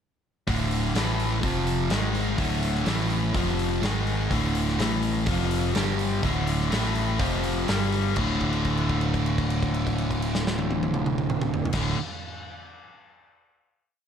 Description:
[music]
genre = classic rock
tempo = 124 BPM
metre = 4/4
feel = straight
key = unclear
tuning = A4 = 442 Hz
[part]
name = biting overdriven guitar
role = riff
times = 0.5-12.0 s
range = D2 to A3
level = -28 LUFS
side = left 9 dB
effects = none
[part]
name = sludgy distorted guitar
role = riff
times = 0.5-12.0 s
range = D2 to A3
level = -28 LUFS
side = right 9 dB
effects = overdrive
[part]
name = picked electric bass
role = bass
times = 0.5-11.9 s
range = D1 to A1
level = -29 LUFS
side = equal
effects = none
[part]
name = big rock drum kit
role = drums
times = 0.5-11.8 s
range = crash cymbal, hi-hat, kick drum, snare drum, toms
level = -30 LUFS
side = equal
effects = none
[sound]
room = light reverb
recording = none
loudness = -23 LUFS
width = side -8 dB against mid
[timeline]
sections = 0.5-8.2 riff; 8.2-12.0 final chord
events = held note 8.2-11.7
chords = 0.5 D5; 0.9 A5; 1.4 F5; 1.9 G#5; 2.4 D5; 2.9 A5; 3.3 F5; 3.8 G#5; 4.3 D5; 4.8 A5; 5.3 F5; 5.8 G5; 6.2 D5; 6.7 A5; 7.2 F5; 7.7 G5; 8.2 D5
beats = | 0.47 0.95 1.42 1.90 | 2.38 2.86 3.34 3.82 | 4.30 4.79 5.27 5.75 | 6.24 6.72 7.21 7.69 | 8.18 8.66 9.14 9.62 | 10.11 10.59 11.07 11.55

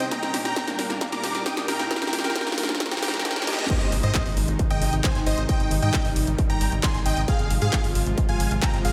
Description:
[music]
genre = uplifting trance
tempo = 134 BPM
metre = 4/4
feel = straight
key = unclear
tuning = A4 = 440 Hz
[part]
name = dense compressed supersaw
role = melody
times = 0.0-8.9 s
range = G4 to Eb6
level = -32 LUFS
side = equal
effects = sidechain pumping, tape echo
[part]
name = lush unison pad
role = sustained chords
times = 0.0-8.9 s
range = Bb2 to Bb4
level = -33 LUFS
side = equal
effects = chorus, sidechain pumping
[part]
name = unison pluck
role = arpeggios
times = 0.0-3.6 s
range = Bb3 to Bb4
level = -37 LUFS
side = equal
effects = sidechain pumping, tape echo
[part]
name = punchy analog drum machine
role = drums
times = 0.0-8.9 s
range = crash cymbal, handclaps, hi-hat, snare drum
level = -31 LUFS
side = equal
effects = overdrive
[part]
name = riser, reverse cymbal and impact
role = sound effects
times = 0.0-5.5 s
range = none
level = -36 LUFS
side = equal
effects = none
[part]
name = electronic kick drum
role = drums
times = 0.1-8.7 s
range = none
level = -28 LUFS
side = equal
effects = distortion, high-pass filter on kick, high-pass filter on room
[part]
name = plucky unison lead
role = second line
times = 3.7-8.9 s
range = Eb5 to C6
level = -37 LUFS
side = equal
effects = sidechain pumping, tape echo
[part]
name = tight sequencer bass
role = bass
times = 3.8-8.9 s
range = Ab1 to Ab2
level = -28 LUFS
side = equal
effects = tube saturation, sidechain pumping
[sound]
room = wet lush hall reverb, RT60 2.0 s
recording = dreamy mix soaked in reverb, high-pass filter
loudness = -24 LUFS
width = mono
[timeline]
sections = 0.0-3.7 A section; 3.7-8.9 B section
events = build-up 0.0-3.7; drum fill 0.0-3.7; reverse cymbal 2.8-3.7; drop 3.7-8.9; impact 3.7-5.5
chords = 0.1 Gm; 3.7 Ab; 7.3 Fm/Ab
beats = | 0.12 0.56 1.01 1.46 | 1.91 2.35 2.80 3.25 | 3.70 4.15 4.59 5.04 | 5.49 5.94 6.38 6.83 | 7.28 7.73 8.18 8.62

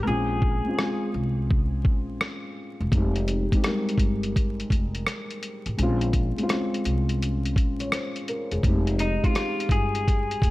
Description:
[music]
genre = lo-fi hip hop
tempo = 84 BPM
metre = 4/4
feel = swing 66% on 16ths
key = unclear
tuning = A4 = 439 Hz
[part]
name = electric guitar through a small old amp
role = melody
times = 0.0-1.1, 9.0-10.5 s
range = Eb4 to Bb4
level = -29 LUFS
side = left 2 dB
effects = low-pass filter, tape echo
[part]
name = felt-muted upright piano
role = accompaniment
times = 0.0-10.5 s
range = G3 to Db5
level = -28 LUFS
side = left 1 dB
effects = cassette tape, low-pass filter
[part]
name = upright bass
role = bass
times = 0.0-10.5 s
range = E1 to C2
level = -27 LUFS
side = equal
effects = none
[part]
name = lo-fi sampler-style drum kit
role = drums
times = 0.4-10.5 s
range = hi-hat, kick drum, rim click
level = -25 LUFS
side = equal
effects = none
[sound]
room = studio reverb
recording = vinyl crackle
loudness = -22 LUFS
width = side -18 dB against mid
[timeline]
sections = 0.0-10.5 A section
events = break 0.1-2.9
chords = 0.1 Bbm9; 2.9 Fm9; 5.8 Bbm9; 8.6 Fm9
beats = | 0.07 0.78 1.50 2.21 | 2.92 3.64 4.35 5.07 | 5.78 6.50 7.21 7.92 | 8.64 9.35 10.07

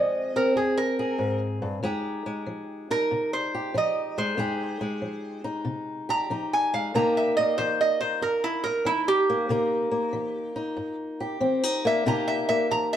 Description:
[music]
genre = acoustic country blues, solo or duo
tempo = 94 BPM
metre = 4/4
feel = swing 67% on 8ths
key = F minor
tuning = A4 = 440 Hz
[part]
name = lap resonator guitar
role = melody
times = 0.0-13.0 s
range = E4 to Bb5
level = -25 LUFS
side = right 2 dB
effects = none
[part]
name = fingerpicked old ladder-braced acoustic guitar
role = accompaniment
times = 0.0-13.0 s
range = F2 to Ab4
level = -27 LUFS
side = left 1 dB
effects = none
[sound]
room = wet stone room reverb, RT60 0.9 s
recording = band playing live in one room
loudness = -24 LUFS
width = side -10 dB against mid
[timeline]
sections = 0.0-13.0 A section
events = resonator guitar played with a steel bar solo 0.0-13.0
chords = 0.0 Bbsus2; 1.8 Fm9; 6.9 C7#9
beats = 0.57 1.20 | 1.84 2.48 3.12 3.75 | 4.39 5.03 5.67 6.30 | 6.94 7.58 8.22 8.86 | 9.50 10.13 10.77 11.41 | 12.05 12.69

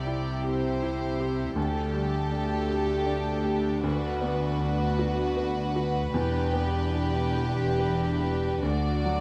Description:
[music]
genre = cinematic, emotional film score for orchestra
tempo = 48-54 BPM (dotted quarters)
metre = 6/8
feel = rubato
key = unclear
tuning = A4 = 440 Hz
[part]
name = warm studio violin section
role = melody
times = 0.0-9.2 s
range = A4 to D5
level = -38 LUFS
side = equal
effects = none
[part]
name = warm studio violin section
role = second line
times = 0.0-9.2 s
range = F#4 to G4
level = -37 LUFS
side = equal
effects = none
[part]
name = dark chamber viola section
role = accompaniment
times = 0.0-9.2 s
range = D4 to E4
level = -39 LUFS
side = equal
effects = none
[part]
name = felt-muted upright piano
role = accompaniment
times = 0.0-9.2 s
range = C2 to B4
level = -35 LUFS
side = equal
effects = none
[part]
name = dark French horn section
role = sustained chords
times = 0.0-9.2 s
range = G3 to G4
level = -37 LUFS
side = equal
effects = none
[part]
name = warm studio cello section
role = bass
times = 0.0-9.2 s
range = D2 to C3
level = -34 LUFS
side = equal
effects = none
[part]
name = warm studio double bass section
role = bass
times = 0.0-9.2 s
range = E1 to D2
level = -34 LUFS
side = equal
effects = none
[sound]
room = light reverb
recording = close, detailed microphones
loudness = -28 LUFS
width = mono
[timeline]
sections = 0.0-9.2 A section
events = none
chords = 0.0 C; 1.6 Dsus4; 3.9 Bm/D; 6.2 Em7; 8.6 D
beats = 0.44 | 1.57 2.71 | 3.85 5.01 | 6.17 7.39 | 8.64

